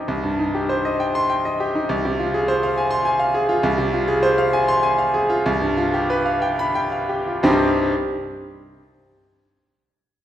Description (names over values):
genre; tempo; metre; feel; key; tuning
classical, virtuoso piano study; 57-70 BPM (dotted quarters); 6/8; rubato; C minor; A4 = 440 Hz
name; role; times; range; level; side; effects
bright concert grand piano; solo; 0.0-7.9 s; C2 to C6; -18 LUFS; equal; none
room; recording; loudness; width
wet recital hall reverb, RT60 1.8 s; heard from further back in the room; -18 LUFS; side -11 dB against mid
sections
0.1-7.4 A section; 7.4-9.4 B section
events
slowing down 2.8-7.4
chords
0.1 Cm; 1.9 Fm/C; 5.5 G7/C; 7.4 Cm